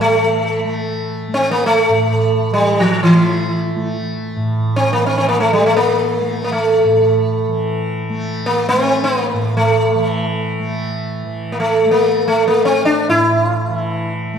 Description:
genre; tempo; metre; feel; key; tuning
indian classical, Hindustani; free time; none; none; unclear; A4 = 441 Hz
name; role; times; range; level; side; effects
sitar; melody; 0.0-14.1 s; E3 to E4; -14 LUFS; equal; none
tanpura; drone; 0.0-14.4 s; A2 to A3; -20 LUFS; right 1 dB; none
room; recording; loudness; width
wet recital hall reverb, RT60 1.5 s; recorded in a church or concert hall; -14 LUFS; side -7 dB against mid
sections
0.0-11.2 A section; 11.2-14.4 A section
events
none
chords
none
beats
free time

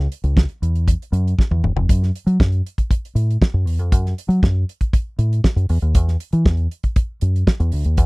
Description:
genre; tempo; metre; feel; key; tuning
disco; 118 BPM; 4/4; straight; F# minor; A4 = 440 Hz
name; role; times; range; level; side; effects
deep dub fingered electric bass; bass; 0.0-8.1 s; E1 to F#3; -17 LUFS; equal; none
damped 70s drum kit; drums; 0.1-8.1 s; hi-hat, kick drum, snare drum, toms; -16 LUFS; equal; none
room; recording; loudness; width
little or no reverb; dry, close 1970s-style studio recording; -16 LUFS; side -27 dB against mid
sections
0.0-1.9 A section; 1.9-8.1 B section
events
drum fill 1.4-1.9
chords
none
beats
0.37 0.88 1.38 | 1.89 2.40 2.91 3.42 | 3.92 4.43 4.94 5.45 | 5.96 6.46 6.97 7.48 | 7.99

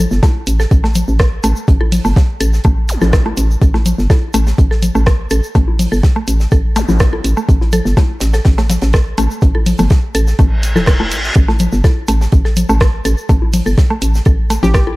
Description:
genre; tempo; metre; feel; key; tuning
minimal techno; 124 BPM; 4/4; straight; unclear; A4 = 440 Hz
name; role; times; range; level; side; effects
mallet-like synth pluck; riff; 0.0-14.9 s; A3 to A4; -21 LUFS; equal; chorus, sidechain pumping, digital delay
hollow knocking FM bass; bass; 0.0-14.9 s; E1 to A1; -14 LUFS; equal; sidechain pumping
crisp fusion drum kit; drums; 0.1-14.9 s; hi-hat, snare drum; -30 LUFS; right 1 dB; high-pass filter on hats, high-pass filter on snare, high-pass filter on room
tube shaker; percussion; 0.1-14.8 s; none; -30 LUFS; left 3 dB; none
electronic kick drum; drums; 0.2-14.8 s; none; -11 LUFS; equal; none
bongos and congas; percussion; 0.2-15.0 s; none; -18 LUFS; left 2 dB; overdrive
punchy analog drum machine; drums; 0.5-14.8 s; hi-hat, rim click; -21 LUFS; right 1 dB; none
zap and reverse cymbal; sound effects; 2.9-3.0, 6.8-6.9, 10.5-11.4 s; none; -22 LUFS; equal; none
hollow square pluck; melody; 14.6-14.8 s; G4; -20 LUFS; equal; chorus, tape echo
room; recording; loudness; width
digital ambience; dark, warm production; -11 LUFS; side -20 dB against mid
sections
0.0-15.0 A section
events
reverse cymbal 10.5-11.4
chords
none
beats
0.23 0.71 1.20 | 1.68 2.16 2.65 3.13 | 3.62 4.10 4.58 5.07 | 5.55 6.04 6.52 7.00 | 7.49 7.97 8.45 8.94 | 9.42 9.91 10.39 10.87 | 11.36 11.84 12.32 12.81 | 13.29 13.78 14.26 14.74

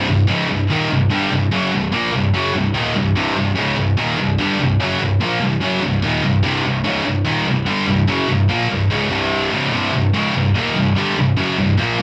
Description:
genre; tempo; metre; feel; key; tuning
metal; 146 BPM; 4/4; straight; C phrygian; A4 = 441 Hz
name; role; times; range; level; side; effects
scooped high-gain guitar; solo; 0.0-12.0 s; C2 to Bb3; -18 LUFS; equal; distortion
room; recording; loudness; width
little or no reverb; dark, warm production; -18 LUFS; mono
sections
0.0-12.0 A section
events
none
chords
0.0 Cm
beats
0.28 0.69 1.10 | 1.51 1.93 2.34 2.75 | 3.16 3.57 3.98 4.39 | 4.80 5.21 5.62 6.03 | 6.44 6.85 7.26 7.67 | 8.09 8.49 8.90 9.32 | 9.73 10.14 10.55 10.96 | 11.37 11.78

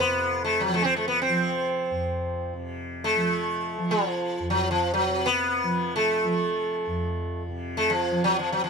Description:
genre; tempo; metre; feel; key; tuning
indian classical, Hindustani; free time; none; none; F major; A4 = 438 Hz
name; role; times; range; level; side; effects
sitar; melody; 0.0-8.7 s; F3 to Db4; -24 LUFS; equal; none
tanpura; drone; 0.0-8.7 s; F2 to F3; -30 LUFS; right 1 dB; none
room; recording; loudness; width
little or no reverb; close, detailed microphones; -23 LUFS; side -5 dB against mid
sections
0.0-8.7 A section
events
none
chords
none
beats
free time

